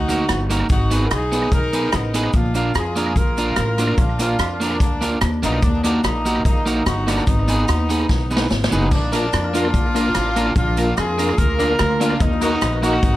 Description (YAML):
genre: ska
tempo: 146 BPM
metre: 4/4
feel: straight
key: unclear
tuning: A4 = 441 Hz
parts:
  - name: warm horn section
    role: melody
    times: 0.0-13.2 s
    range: Bb3 to Bb4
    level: -23 LUFS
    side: equal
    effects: tape echo
  - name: upright bass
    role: bass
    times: 0.0-13.2 s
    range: Gb1 to F2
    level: -22 LUFS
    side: equal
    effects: none
  - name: electric guitar at the edge of break-up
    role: accompaniment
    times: 0.1-13.0 s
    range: Bb3 to Cb5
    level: -23 LUFS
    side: right 2 dB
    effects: none
  - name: swinging big-band drum kit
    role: drums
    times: 0.1-13.1 s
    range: hi-hat, kick drum, rim click, snare drum, splash cymbal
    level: -21 LUFS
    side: equal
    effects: tape echo
  - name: cabasa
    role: percussion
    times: 0.1-13.1 s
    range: none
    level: -40 LUFS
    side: left 5 dB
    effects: none
  - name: percussive tonewheel organ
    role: stabs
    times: 9.1-13.0 s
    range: Bb3 to Bb4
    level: -24 LUFS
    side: left 2 dB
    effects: overdrive, chorus vibrato, slow rotary speaker, tape echo
room: light reverb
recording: none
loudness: -16 LUFS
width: side -15 dB against mid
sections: 0.0-13.2 A section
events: drum fill 8.1-8.9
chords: 0.0 Ebm; 0.7 Abm; 2.3 Bb; 5.6 Ebm; 7.3 Abm; 8.9 Bb; 12.2 Ebm